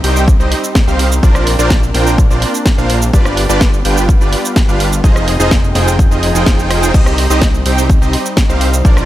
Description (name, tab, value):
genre	EDM, festival progressive house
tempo	126 BPM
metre	4/4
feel	straight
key	C minor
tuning	A4 = 439 Hz
part	lush unison pad	sustained chords	0.0-9.1 s	F3 to G5	-22 LUFS	equal	chorus, sidechain pumping
part	supersaw chords	riff	0.0-9.1 s	C4 to G5	-16 LUFS	right 1 dB	sidechain pumping, digital delay
part	fat analog bass	bass	0.0-9.1 s	F1 to C2	-15 LUFS	equal	sidechain pumping
part	house drum kit	drums	0.0-9.1 s	crash cymbal, hi-hat, rim click, shaker, snare drum	-19 LUFS	right 1 dB	none
part	electronic kick drum	drums	0.3-8.9 s	none	-11 LUFS	equal	none
room	little or no reverb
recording	none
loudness	-9 LUFS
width	side -14 dB against mid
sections	0.0-9.1 A section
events	none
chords	0.0 Cm; 1.2 Bbadd9; 3.1 G7; 5.0 Fm7; 6.9 Cm